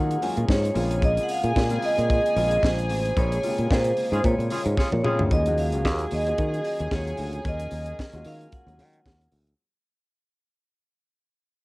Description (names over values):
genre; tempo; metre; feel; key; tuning
disco; 112 BPM; 4/4; swing 56% on 16ths; Eb dorian; A4 = 437 Hz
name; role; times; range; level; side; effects
vibraphone with medium hard mallets; melody; 0.0-9.3 s; C5 to Ab5; -27 LUFS; right 1 dB; cassette tape
dark studio string section; second line; 0.0-9.3 s; Ab4 to Db6; -35 LUFS; equal; cassette tape
warm grand piano; accompaniment; 0.0-9.6 s; C3 to Gb4; -32 LUFS; left 3 dB; cassette tape
mellow woodwind section; sustained chords; 0.0-9.6 s; Eb3 to Bb4; -35 LUFS; equal; cassette tape
fingered electric bass; bass; 0.0-9.5 s; A1 to Eb3; -26 LUFS; equal; none
tight funk drum kit; drums; 0.1-9.6 s; hi-hat, kick drum, snare drum, toms; -26 LUFS; equal; cassette tape
mellow horn section; stabs; 4.1-5.2 s; Db4 to Ab4; -29 LUFS; equal; cassette tape
room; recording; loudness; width
moderate booth ambience, RT60 0.2 s; home recording on cassette; -21 LUFS; side -21 dB against mid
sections
0.0-5.3 A section; 5.3-9.6 B section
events
band accent 3.2-5.3; drum fill 4.8-5.3; fade-out 5.3-9.6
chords
0.0 Ebm11; 0.8 Bbm9; 5.3 Ebm11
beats
0.49 | 1.02 1.56 2.10 2.63 | 3.17 3.70 4.24 4.77 | 5.31 5.84 6.38 6.91 | 7.45 7.98 8.52 9.05